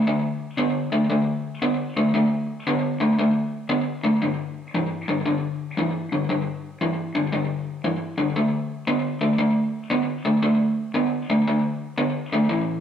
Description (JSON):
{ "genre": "blues", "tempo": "116 BPM", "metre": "4/4", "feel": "swing 66% on 8ths", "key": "unclear", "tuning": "A4 = 441 Hz", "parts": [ { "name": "raw garage guitar", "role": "solo", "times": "0.0-12.8 s", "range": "G2 to B3", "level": "-21 LUFS", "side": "equal", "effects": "overdrive, slapback echo" } ], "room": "moderate spring reverb, RT60 1.4 s, digital ambience", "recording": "none", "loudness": "-21 LUFS", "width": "side -9 dB against mid", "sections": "0.0-12.8 A section", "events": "none", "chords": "0.0 D5; 4.2 G5; 8.4 D5" }